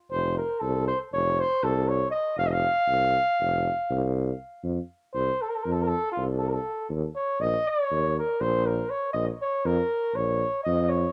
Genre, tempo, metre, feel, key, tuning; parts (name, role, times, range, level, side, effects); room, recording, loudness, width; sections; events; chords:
balkan folk; 239 BPM (eighths); 9/8; straight; A4 = 438 Hz
mellow flugelhorn; melody; 0.1-11.1 s; F4 to F5; -28 LUFS; equal
warm tuba; bass; 0.1-11.1 s; F1 to F2; -30 LUFS; equal
light reverb; -27 LUFS; mono
0.0-4.6 A section; 4.6-11.1 B section
flugelhorn solo 4.6-11.1
0.1 F5; 6.9 Eb5; 9.1 Bbm